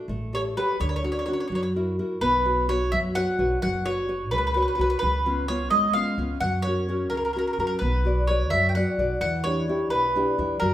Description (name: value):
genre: italian folk, Italian serenade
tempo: 86 BPM (dotted quarters)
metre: 6/8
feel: straight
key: B harmonic minor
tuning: A4 = 440 Hz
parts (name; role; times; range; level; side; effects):
- nylon-string guitar; accompaniment; 0.0-10.7 s; B2 to D5; -27 LUFS; left 1 dB; none
- upright bass; bass; 0.1-10.7 s; F#1 to F#2; -28 LUFS; equal; none
- bowl-back mandolin; melody; 0.3-10.7 s; A#4 to G5; -25 LUFS; equal; none
room: wet large studio reverb, RT60 1.0 s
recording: band playing live in one room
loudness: -22 LUFS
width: side -12 dB against mid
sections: 0.0-2.2 A section; 2.2-10.7 B section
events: none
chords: 0.1 A7; 0.8 Dmaj7; 1.5 F#7; 2.2 Bsus2; 3.6 F#sus4; 5.0 C#7; 6.4 F#; 7.8 Bm; 9.2 Em7